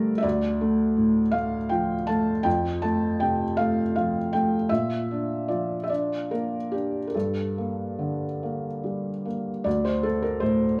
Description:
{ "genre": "neoclassical minimalist piano", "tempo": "47-55 BPM (dotted quarters)", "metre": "6/8", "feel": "rubato", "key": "D minor", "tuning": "A4 = 440 Hz", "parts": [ { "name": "felt-muted upright piano", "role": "solo", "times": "0.0-10.8 s", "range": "D2 to A5", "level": "-26 LUFS", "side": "equal", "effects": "none" } ], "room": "wet large studio reverb, RT60 1.2 s", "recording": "band playing live in one room", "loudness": "-26 LUFS", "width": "mono", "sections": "0.0-9.7 A section; 9.7-10.8 A section", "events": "none", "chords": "0.2 Dm; 2.5 F; 4.7 Bb; 7.1 Gmadd9; 9.7 D5" }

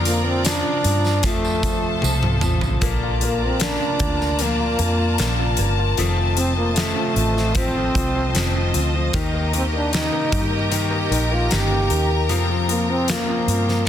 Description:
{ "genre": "pop ballad", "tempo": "76 BPM", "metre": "4/4", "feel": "straight", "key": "Bb major", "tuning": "A4 = 440 Hz", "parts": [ { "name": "clear concert grand piano", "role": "accompaniment", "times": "0.0-13.9 s", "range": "Eb3 to F4", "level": "-27 LUFS", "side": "left 3 dB", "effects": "none" }, { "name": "clear studio string section", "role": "sustained chords", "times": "0.0-13.9 s", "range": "F4 to Bb5", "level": "-26 LUFS", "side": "left 1 dB", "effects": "none" }, { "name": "picked steel-string acoustic guitar", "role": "arpeggios", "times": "0.0-13.9 s", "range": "F2 to G4", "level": "-30 LUFS", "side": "left 6 dB", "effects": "none" }, { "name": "vintage muted fingered electric bass", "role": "bass", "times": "0.0-13.8 s", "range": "F1 to G2", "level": "-23 LUFS", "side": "equal", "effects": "none" }, { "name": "breathy trombone", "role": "melody", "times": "0.1-13.9 s", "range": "A3 to G4", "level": "-24 LUFS", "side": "right 1 dB", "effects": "none" }, { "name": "huge arena drum kit", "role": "drums", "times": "0.1-13.9 s", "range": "hi-hat, kick drum, snare drum, toms", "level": "-24 LUFS", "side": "equal", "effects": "none" }, { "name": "tambourine", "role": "percussion", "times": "0.1-2.8 s", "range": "none", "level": "-32 LUFS", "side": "right 8 dB", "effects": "none" } ], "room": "light reverb, small room ambience", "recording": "dense, heavily limited modern master", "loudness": "-18 LUFS", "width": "side -10 dB against mid", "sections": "0.0-2.8 A section; 2.8-13.9 A section", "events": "drum fill 2.0-2.8", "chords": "0.0 Bb/F; 1.2 F; 2.8 Bbmaj7; 6.0 F7; 9.1 Eb; 12.3 Fsus4" }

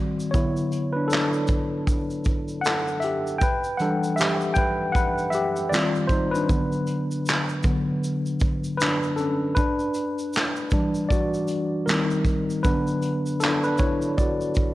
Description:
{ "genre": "lo-fi hip hop", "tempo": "78 BPM", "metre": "4/4", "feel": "swing 61% on 16ths", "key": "D major", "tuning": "A4 = 440 Hz", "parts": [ { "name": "mellow tine electric piano", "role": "accompaniment", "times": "0.0-14.7 s", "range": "D3 to G5", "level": "-23 LUFS", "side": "left 1 dB", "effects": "overdrive, slow stereo tremolo, cassette tape, low-pass filter" }, { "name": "vintage brush drum kit", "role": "drums", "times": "0.2-14.7 s", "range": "handclaps, hi-hat, kick drum, shaker, snare drum", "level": "-25 LUFS", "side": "right 1 dB", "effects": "none" } ], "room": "light reverb, studio ambience", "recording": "none", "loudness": "-21 LUFS", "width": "side -16 dB against mid", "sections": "0.0-14.7 A section", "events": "tine electric piano solo 0.0-14.7", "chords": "0.3 D69; 3.4 Em7; 5.7 Eb69; 6.5 D6; 9.6 Em9; 11.9 Eb6; 12.6 D69" }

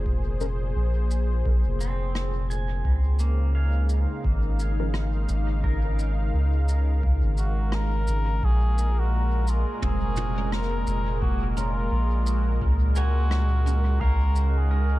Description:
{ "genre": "ambient dub", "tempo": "86 BPM", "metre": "4/4", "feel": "swing 59% on 16ths", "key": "Bb minor", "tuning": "A4 = 440 Hz", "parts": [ { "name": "warm analog pad", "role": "sustained chords", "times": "0.0-15.0 s", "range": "Bb2 to F5", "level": "-32 LUFS", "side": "equal", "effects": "chorus" }, { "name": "soft dub sub bass", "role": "bass", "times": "0.0-15.0 s", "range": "F1 to Db2", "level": "-23 LUFS", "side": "equal", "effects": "none" }, { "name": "electronic kick drum", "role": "drums", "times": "0.1-14.2 s", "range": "none", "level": "-27 LUFS", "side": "equal", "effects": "none" }, { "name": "filtered dub chord stab", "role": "stabs", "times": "0.4-5.0, 10.4-13.8 s", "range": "F3 to Bb4", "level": "-40 LUFS", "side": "equal", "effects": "none" }, { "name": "jazz brush drum kit", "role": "drums", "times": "0.4-14.5 s", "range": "rim click, shaker, toms", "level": "-37 LUFS", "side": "equal", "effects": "dub echo" }, { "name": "pedal steel guitar", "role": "arpeggios", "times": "1.8-15.0 s", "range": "Bb3 to Ab5", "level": "-38 LUFS", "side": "right 3 dB", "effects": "dub echo" }, { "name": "trumpet with cup mute", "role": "melody", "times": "7.4-15.0 s", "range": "F4 to Bb4", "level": "-32 LUFS", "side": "equal", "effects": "dub echo" } ], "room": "little or no reverb", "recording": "dark, warm production", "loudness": "-22 LUFS", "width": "side -17 dB against mid", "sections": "0.0-8.4 A section; 8.4-15.0 B section", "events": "band accent 7.7-8.1", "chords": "0.0 Bb7(no3); 2.8 Db6; 8.4 Bbm7; 14.0 Db6" }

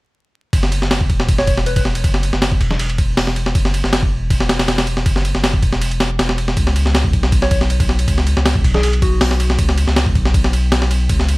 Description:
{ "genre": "drum and bass, jungle", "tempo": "159 BPM", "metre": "4/4", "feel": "straight", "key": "unclear", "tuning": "A4 = 440 Hz", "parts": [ { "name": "saturated sub bass", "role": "bass", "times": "0.5-11.4 s", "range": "E1 to C#2", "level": "-17 LUFS", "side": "equal", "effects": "none" }, { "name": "breakbeat sampler-style drum kit", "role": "drums", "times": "0.5-11.4 s", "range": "hi-hat, kick drum, ride cymbal, snare drum", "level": "-16 LUFS", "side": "equal", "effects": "none" }, { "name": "soft struck synth lead", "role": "melody", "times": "1.4-1.8, 7.4-9.6 s", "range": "F#4 to C#5", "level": "-24 LUFS", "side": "equal", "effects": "chorus, dub echo" } ], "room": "little or no reverb", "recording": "vinyl crackle", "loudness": "-14 LUFS", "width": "side -22 dB against mid", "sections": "0.5-11.4 A section", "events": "none", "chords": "0.5 Esus2; 6.6 N.C." }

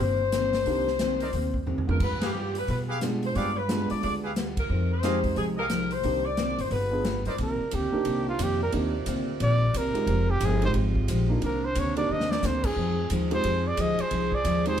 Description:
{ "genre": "jazz, big band swing", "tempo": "178 BPM", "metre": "4/4", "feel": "swing 62% on 8ths", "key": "C minor", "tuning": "A4 = 440 Hz", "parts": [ { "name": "mellow saxophone section", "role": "melody", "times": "0.0-7.2 s", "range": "G4 to D5", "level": "-29 LUFS", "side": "left 4 dB", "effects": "plate reverb" }, { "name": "picked steel-string acoustic guitar", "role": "accompaniment", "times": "0.0-14.8 s", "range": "C3 to Ab4", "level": "-32 LUFS", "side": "left 2 dB", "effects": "none" }, { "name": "upright bass", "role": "bass", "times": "0.0-14.8 s", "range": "F1 to B2", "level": "-29 LUFS", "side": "equal", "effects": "none" }, { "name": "swinging big-band drum kit", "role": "drums", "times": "0.3-14.8 s", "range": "crash cymbal, hi-hat, kick drum, ride cymbal, snare drum, toms", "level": "-34 LUFS", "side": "equal", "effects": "none" }, { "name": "warm concert grand piano", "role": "accompaniment", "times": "0.7-14.8 s", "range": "Ab3 to Ab4", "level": "-31 LUFS", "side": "right 3 dB", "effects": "none" }, { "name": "clear trumpet section", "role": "stabs", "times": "1.2-7.3 s", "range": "Eb4 to F5", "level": "-35 LUFS", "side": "equal", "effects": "none" }, { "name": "warm trumpet", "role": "melody", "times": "7.4-14.8 s", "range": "F4 to Eb5", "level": "-28 LUFS", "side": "right 2 dB", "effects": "plate reverb" }, { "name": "clear saxophone section", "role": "sustained chords", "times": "7.4-14.8 s", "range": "Bb2 to D5", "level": "-35 LUFS", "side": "right 2 dB", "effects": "none" } ], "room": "wet club reverb, RT60 0.6 s", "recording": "heard from further back in the room", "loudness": "-24 LUFS", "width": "side -9 dB against mid", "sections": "0.0-7.4 A section; 7.4-14.8 B section", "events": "drum fill 1.7-2.0, 12.1-12.4; band accent 2.2, 4.5; trumpet solo 7.4-14.8", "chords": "0.0 Cm9; 2.0 G7b9; 4.7 Fm9; 6.0 Cm9; 6.7 G7b9; 7.4 Cm9; 10.1 Fm9; 11.4 Cm9; 12.8 Fm9" }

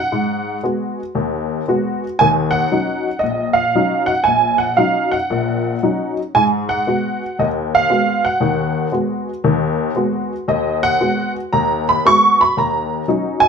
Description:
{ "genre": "solo jazz", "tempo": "116 BPM", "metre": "4/4", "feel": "swing 66% on 8ths", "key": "unclear", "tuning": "A4 = 440 Hz", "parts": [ { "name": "honky-tonk upright piano", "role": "solo", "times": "0.0-13.5 s", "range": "Bb1 to Db6", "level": "-15 LUFS", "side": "equal", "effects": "none" } ], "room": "moderate stone room reverb, RT60 1.1 s", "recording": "band playing live in one room", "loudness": "-15 LUFS", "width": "side -6 dB against mid", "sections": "0.0-13.5 A section", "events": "none", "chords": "0.1 Abm7; 2.2 Ebm7; 6.3 Abm7; 12.6 Ebm7" }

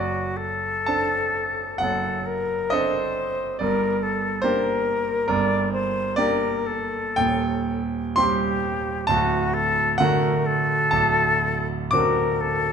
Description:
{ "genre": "classical, romantic duo for flute and grand piano", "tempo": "56-72 BPM", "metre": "4/4", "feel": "rubato", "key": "unclear", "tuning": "A4 = 440 Hz", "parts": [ { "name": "silver concert flute", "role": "melody", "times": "0.0-12.7 s", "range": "F#4 to D5", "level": "-24 LUFS", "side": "left 3 dB", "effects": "none" }, { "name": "clear concert grand piano", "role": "accompaniment", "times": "0.0-12.7 s", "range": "D1 to D6", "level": "-23 LUFS", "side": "right 2 dB", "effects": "none" } ], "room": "moderate recital hall reverb, RT60 1.4 s", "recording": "close, detailed microphones", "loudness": "-20 LUFS", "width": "side -7 dB against mid", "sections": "0.0-12.7 A section", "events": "none", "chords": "0.0 D7/F#; 3.6 Gm; 7.2 Cm/Eb; 9.1 D; 10.9 D7" }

